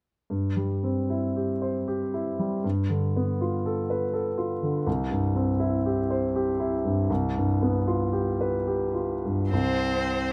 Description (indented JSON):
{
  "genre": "classical, slow romantic movement for piano trio",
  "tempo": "68-83 BPM",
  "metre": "3/4",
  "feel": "rubato",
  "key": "C major",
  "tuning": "A4 = 440 Hz",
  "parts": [
    { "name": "clear baby grand piano", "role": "accompaniment", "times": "0.3-10.3 s", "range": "C2 to C5", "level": "-27 LUFS", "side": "equal", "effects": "none" },
    { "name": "rich violin", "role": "melody", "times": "9.5-10.3 s", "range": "C5", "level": "-32 LUFS", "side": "equal", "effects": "none" },
    { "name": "rich cello", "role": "second line", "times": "9.5-10.3 s", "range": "C4", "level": "-31 LUFS", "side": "equal", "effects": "none" }
  ],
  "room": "light reverb",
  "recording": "close, detailed microphones",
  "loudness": "-27 LUFS",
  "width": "mono",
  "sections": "0.3-9.5 A section",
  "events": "none",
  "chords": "0.3 C/G; 2.6 G9; 4.9 C; 7.1 G7/C; 9.5 N.C."
}